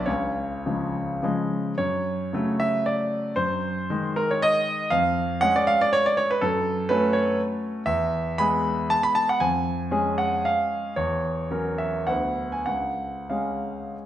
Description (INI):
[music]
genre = classical, romantic triple-time dance for piano with dotted rhythms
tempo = 89-129 BPM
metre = 3/4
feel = rubato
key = F# minor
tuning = A4 = 440 Hz
[part]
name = warm grand piano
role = solo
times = 0.0-14.1 s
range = C#2 to B5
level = -22 LUFS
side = equal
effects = none
[sound]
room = wet recital hall reverb, RT60 1.4 s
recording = none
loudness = -22 LUFS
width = side -11 dB against mid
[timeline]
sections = 0.0-1.8 A section; 1.8-14.1 B section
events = none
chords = 0.1 C#; 1.8 F#m; 3.4 G#7/F#; 4.9 C#/E#; 6.4 F#m; 7.9 E; 9.4 C#/E#; 11.0 F#7/E; 12.1 Bm/D; 12.7 C#